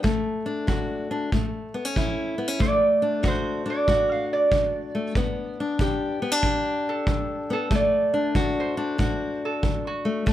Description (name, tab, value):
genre	acoustic country blues, solo or duo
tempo	94 BPM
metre	4/4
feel	swing 66% on 8ths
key	D major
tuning	A4 = 439 Hz
part	fingerpicked steel-string acoustic guitar	accompaniment	0.0-10.3 s	D2 to G4	-26 LUFS	left 3 dB	none
part	kick drum	drums	0.0-10.3 s	none	-26 LUFS	right 1 dB	none
part	lap resonator guitar	melody	2.6-10.3 s	F#4 to F5	-24 LUFS	right 2 dB	none
room	light reverb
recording	none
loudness	-22 LUFS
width	side -12 dB against mid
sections	0.0-2.6 A section; 2.6-10.3 B section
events	resonator guitar played with a steel bar solo 2.6-10.3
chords	0.0 D; 1.3 A; 2.6 D; 5.2 G; 7.7 D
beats	| 0.04 0.68 1.32 1.96 | 2.60 3.23 3.88 4.51 | 5.15 5.79 6.43 7.07 | 7.71 8.35 8.99 9.63 | 10.27